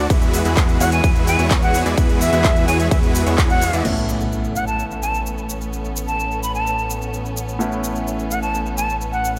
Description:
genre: EDM, festival progressive house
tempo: 128 BPM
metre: 4/4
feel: straight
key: A major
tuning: A4 = 440 Hz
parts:
  - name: bright studio string section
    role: sustained chords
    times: 0.0-9.4 s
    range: E3 to G#4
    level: -32 LUFS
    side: equal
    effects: sidechain pumping
  - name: big supersaw lead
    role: riff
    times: 0.0-3.8 s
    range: G#3 to D5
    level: -25 LUFS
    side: equal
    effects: sidechain pumping, low-pass filter, tape echo
  - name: fat analog bass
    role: bass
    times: 0.0-9.4 s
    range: A1 to E2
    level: -26 LUFS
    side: equal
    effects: tube saturation, sidechain pumping
  - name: big-room dance drum kit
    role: drums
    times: 0.1-9.4 s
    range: crash cymbal, handclaps, hi-hat, ride cymbal, shaker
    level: -29 LUFS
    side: equal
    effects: none
  - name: electronic kick drum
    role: drums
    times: 0.1-3.5 s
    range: none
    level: -19 LUFS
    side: equal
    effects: none
  - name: breathy jazz flute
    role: melody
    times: 0.8-9.3 s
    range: E5 to B5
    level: -25 LUFS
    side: equal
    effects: tape echo
  - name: felt-muted upright piano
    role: accompaniment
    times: 3.8-9.4 s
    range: A2 to E4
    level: -30 LUFS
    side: equal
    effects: sidechain pumping
  - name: impact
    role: sound effects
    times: 3.9-5.7 s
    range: none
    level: -32 LUFS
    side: equal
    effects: none
room: light reverb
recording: none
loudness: -19 LUFS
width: mono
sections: 0.0-3.9 A section; 3.9-9.4 B section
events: drop 0.0-3.9; impact 3.9-5.7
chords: 0.1 Eadd9; 3.9 Aadd9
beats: | 0.10 0.57 1.04 1.51 | 1.98 2.44 2.91 3.38 | 3.85 4.32 4.79 5.26 | 5.73 6.20 6.66 7.13 | 7.60 8.07 8.54 9.01

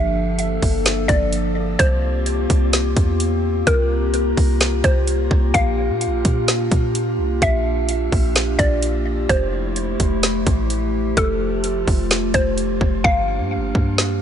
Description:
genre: hip hop, atmospheric cloud-rap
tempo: 128 BPM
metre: 4/4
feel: half-time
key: unclear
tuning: A4 = 440 Hz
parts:
  - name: mallet-like synth pluck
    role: melody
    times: 0.0-14.2 s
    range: A4 to F5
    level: -24 LUFS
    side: equal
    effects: chorus, tape echo
  - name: warbly tape-like pad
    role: sustained chords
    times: 0.0-14.2 s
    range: F3 to A4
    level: -22 LUFS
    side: left 1 dB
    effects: chorus, built-in reverb, sidechain pumping
  - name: clean 808-style bass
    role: bass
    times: 0.0-14.2 s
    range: F1 to Bb2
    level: -22 LUFS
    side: equal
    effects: none
  - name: trap drum kit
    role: drums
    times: 0.4-14.1 s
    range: hi-hat, kick drum, snare drum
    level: -19 LUFS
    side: equal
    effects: none
  - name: kalimba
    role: texture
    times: 13.0-14.2 s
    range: G4 to Bb5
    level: -35 LUFS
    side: left 1 dB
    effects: none
room: light reverb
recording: nothing above 10.6 kHz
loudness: -16 LUFS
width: side -9 dB against mid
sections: 0.0-14.2 A section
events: hi-hats muted 13.0-14.2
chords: 0.0 Gm7; 1.8 C7sus4; 5.5 Bb6; 9.3 Fmaj9; 13.0 Gm7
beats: 0.39 0.86 1.32 | 1.79 2.26 2.73 3.20 | 3.67 4.14 4.61 5.08 | 5.54 6.01 6.48 6.95 | 7.42 7.89 8.36 8.82 | 9.29 9.76 10.23 10.70 | 11.17 11.64 12.11 12.57 | 13.04 13.51 13.98

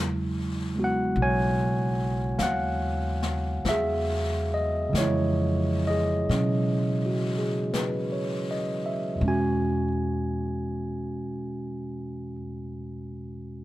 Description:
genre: jazz ballad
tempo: 40-51 BPM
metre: 4/4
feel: swing 67% on 8ths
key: E major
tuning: A4 = 441 Hz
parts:
  - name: bright tine electric piano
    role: accompaniment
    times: 0.0-13.6 s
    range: E2 to G#5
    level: -26 LUFS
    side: right 1 dB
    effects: none
  - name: upright bass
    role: bass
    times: 0.0-12.3 s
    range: B1 to B2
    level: -30 LUFS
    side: equal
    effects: none
  - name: jazz brush drum kit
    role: drums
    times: 1.2-9.9 s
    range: brushed snare drum, hi-hat, snare drum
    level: -36 LUFS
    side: left 3 dB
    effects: none
room: little or no reverb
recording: dark, warm production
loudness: -24 LUFS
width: side -16 dB against mid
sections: 0.0-9.2 A section; 9.2-13.6 B section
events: slowing down 0.0-9.2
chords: 0.0 E69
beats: 1.16 2.39 | 3.65 4.94 6.30 7.72 | 9.21 10.73 12.22

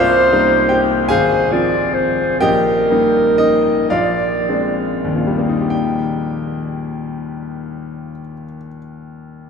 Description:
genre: classical, romantic duo for clarinet and grand piano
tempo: 31-53 BPM (dotted quarters)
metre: 6/8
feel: rubato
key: Eb major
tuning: A4 = 440 Hz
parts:
  - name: mellow clarinet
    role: melody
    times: 0.0-4.8 s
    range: Bb4 to D5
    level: -17 LUFS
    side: equal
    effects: none
  - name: clear grand piano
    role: accompaniment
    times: 0.0-9.5 s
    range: Ab1 to Ab5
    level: -17 LUFS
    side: left 1 dB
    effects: none
room: wet cathedral reverb, RT60 6.4 s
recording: in a vast, echoing space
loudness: -14 LUFS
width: side -6 dB against mid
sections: 0.0-5.7 A section; 5.7-9.2 B section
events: slowing down 0.0-5.7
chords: 0.0 Cm7; 1.1 Fm/Ab; 2.4 Eb/Bb; 3.9 Bb9; 5.7 Eb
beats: 1.12 | 2.42 3.92 | 5.71 7.41

